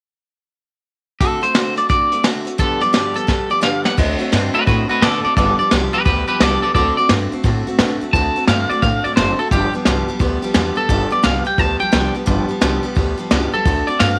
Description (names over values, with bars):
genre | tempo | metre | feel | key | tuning
rockabilly | 173 BPM | 4/4 | swing 64% on 8ths | unclear | A4 = 440 Hz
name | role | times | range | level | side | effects
electric guitar at the edge of break-up | melody | 1.2-14.2 s | F#4 to A5 | -20 LUFS | equal | tape echo
picked steel-string acoustic guitar | accompaniment | 1.2-14.2 s | G2 to G4 | -24 LUFS | equal | none
vintage brush drum kit | drums | 1.2-14.1 s | crash cymbal, hi-hat, kick drum, snare drum | -20 LUFS | equal | none
upright bass | bass | 4.0-14.2 s | F#1 to B2 | -24 LUFS | equal | none
room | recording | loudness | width
light reverb, small room ambience | none | -17 LUFS | mono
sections
1.2-4.0 A section; 4.0-14.2 B section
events
drum fill 3.3-4.0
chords
1.2 D7; 2.6 G7; 4.0 D7; 5.4 G7; 6.8 D7; 9.5 G7; 13.7 D7